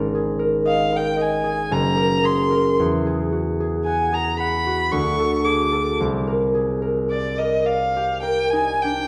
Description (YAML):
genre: classical, impressionist duo for violin and harp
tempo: 49-58 BPM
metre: 3/4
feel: rubato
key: unclear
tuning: A4 = 440 Hz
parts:
  - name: concert harp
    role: accompaniment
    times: 0.0-9.1 s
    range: Gb1 to F#5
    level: -22 LUFS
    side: equal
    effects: none
  - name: rich violin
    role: melody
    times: 0.7-9.1 s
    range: D5 to D6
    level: -25 LUFS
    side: equal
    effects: none
room: wet recital hall reverb, RT60 1.4 s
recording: dark, warm production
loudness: -21 LUFS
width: mono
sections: 0.0-9.1 A section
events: none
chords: 0.0 Absus2; 1.7 Gbadd9; 2.8 Eadd9; 4.9 D; 6.0 Cm9